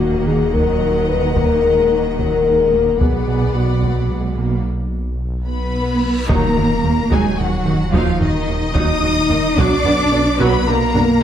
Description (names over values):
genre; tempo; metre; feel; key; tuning
cinematic, hybrid orchestral and electronic film score; 73 BPM (dotted quarters); 6/8; straight; Eb harmonic minor; A4 = 440 Hz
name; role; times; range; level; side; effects
warm symphonic violin section; melody; 0.0-11.2 s; Eb5 to Eb6; -25 LUFS; left 4 dB; none
warm symphonic violin section; second line; 0.0-11.2 s; Eb4 to Gb5; -26 LUFS; left 2 dB; none
warm symphonic viola section; accompaniment; 0.0-11.0 s; D3 to F#4; -24 LUFS; right 2 dB; none
mellow French horn section; sustained chords; 0.0-11.2 s; Eb3 to Cb5; -20 LUFS; left 6 dB; none
smooth synth bass; riff; 0.0-11.1 s; Eb2 to B3; -24 LUFS; right 2 dB; none
dark detuned saw bass; bass; 0.0-11.2 s; Eb1 to B1; -24 LUFS; equal; none
warm symphonic cello section; bass; 0.0-11.2 s; B2 to Eb4; -22 LUFS; right 2 dB; none
warm symphonic double bass section; bass; 0.0-11.0 s; B1 to Eb2; -24 LUFS; right 4 dB; none
taiko ensemble; drums; 0.5-11.2 s; none; -23 LUFS; equal; none
reverse cymbal and impact; sound effects; 6.1-7.9 s; none; -25 LUFS; equal; none
room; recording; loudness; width
moderate concert hall reverb, RT60 2.3 s; dark, warm production; -14 LUFS; side -9 dB against mid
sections
0.0-6.3 A section; 6.3-11.2 B section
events
break 4.7-6.3; reverse cymbal 6.1; impact 6.3-7.9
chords
0.0 Ebm; 3.0 Bm; 6.3 Ebm; 9.6 Bm